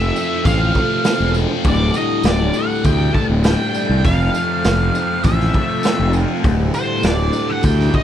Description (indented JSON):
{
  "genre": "psychedelic rock",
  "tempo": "100 BPM",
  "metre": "4/4",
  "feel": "straight",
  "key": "unclear",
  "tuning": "A4 = 440 Hz",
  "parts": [
    { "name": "octave-fuzz lead guitar", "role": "melody", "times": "0.0-8.0 s", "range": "C5 to A5", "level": "-22 LUFS", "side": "equal", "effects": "wah, distortion, tape echo" },
    { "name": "overdriven combo organ", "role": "sustained chords", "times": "0.0-8.0 s", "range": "F3 to A4", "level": "-27 LUFS", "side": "right 6 dB", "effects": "lush chorus" },
    { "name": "thick fuzz guitar", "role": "riff", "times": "0.0-8.0 s", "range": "D2 to F4", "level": "-20 LUFS", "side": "left 3 dB", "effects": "distortion, phaser" },
    { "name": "fuzz fingered electric bass", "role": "bass", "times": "0.0-7.9 s", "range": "D1 to D2", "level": "-18 LUFS", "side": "equal", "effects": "overdrive" },
    { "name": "tambourine", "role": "percussion", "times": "0.2-7.8 s", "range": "none", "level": "-36 LUFS", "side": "right 9 dB", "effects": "none" },
    { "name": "raw garage drum kit", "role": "drums", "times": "0.5-8.0 s", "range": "hi-hat, kick drum, snare drum", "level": "-20 LUFS", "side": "equal", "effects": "none" }
  ],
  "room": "little or no reverb",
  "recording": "none",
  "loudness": "-14 LUFS",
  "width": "side -10 dB against mid",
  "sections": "0.0-8.0 A section",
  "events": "none",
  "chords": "0.0 F; 1.6 Dsus4; 4.0 F; 6.4 Dsus4",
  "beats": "0.45 1.05 | 1.65 2.25 2.85 3.45 | 4.05 4.65 5.25 5.85 | 6.45 7.04 7.64"
}